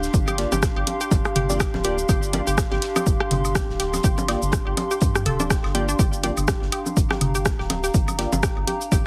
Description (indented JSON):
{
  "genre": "minimal techno",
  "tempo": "123 BPM",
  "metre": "4/4",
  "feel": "swing 57% on 16ths",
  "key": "G minor",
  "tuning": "A4 = 439 Hz",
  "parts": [
    { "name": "rubbery square bass", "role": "bass", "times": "0.0-9.0 s", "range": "D1 to G2", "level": "-30 LUFS", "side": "equal", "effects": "sidechain pumping" },
    { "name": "damped 70s drum kit", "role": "drums", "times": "0.0-9.1 s", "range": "hi-hat, snare drum", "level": "-42 LUFS", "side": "equal", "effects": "none" },
    { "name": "punchy analog drum machine", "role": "drums", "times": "0.0-9.0 s", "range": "cabasa, hi-hat, rim click", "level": "-29 LUFS", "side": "equal", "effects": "none" },
    { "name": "warbly tape-like pad", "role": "texture", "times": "0.0-9.1 s", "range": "D4 to C6", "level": "-31 LUFS", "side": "equal", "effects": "chorus, built-in reverb, sidechain pumping" },
    { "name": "electronic kick drum", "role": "drums", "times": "0.1-9.0 s", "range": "none", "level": "-25 LUFS", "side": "equal", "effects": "none" },
    { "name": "resonant blip pluck", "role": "riff", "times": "0.3-9.0 s", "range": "D4 to G5", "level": "-32 LUFS", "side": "equal", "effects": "chorus, sidechain pumping, tape echo" },
    { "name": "electronic bongos, woodblock and toms", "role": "percussion", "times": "0.3-9.0 s", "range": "none", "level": "-30 LUFS", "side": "equal", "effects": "overdrive" },
    { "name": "wavetable chord stab", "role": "stabs", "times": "0.4-8.3 s", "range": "Bb3 to D5", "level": "-33 LUFS", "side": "equal", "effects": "tape echo" }
  ],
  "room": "little or no reverb",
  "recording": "heavily compressed radio sound, multiband compression",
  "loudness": "-22 LUFS",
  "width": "mono",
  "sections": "0.0-9.1 A section",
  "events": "none",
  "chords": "0.0 Gm7"
}